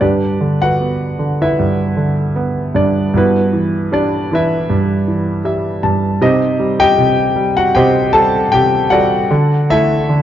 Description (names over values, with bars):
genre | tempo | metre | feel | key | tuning
classical, lyrical solo piano | 78 BPM | 4/4 | rubato | unclear | A4 = 440 Hz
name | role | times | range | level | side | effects
clear concert grand piano | solo | 0.0-10.2 s | G2 to A5 | -12 LUFS | equal | none
room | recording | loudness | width
moderate recital hall reverb, RT60 1.6 s | dark, warm production, nothing above 7.5 kHz | -12 LUFS | side -11 dB against mid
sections
0.0-10.2 A section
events
grand piano fill 5.1-6.2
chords
0.0 Emadd9/G; 6.2 Cm; 9.3 D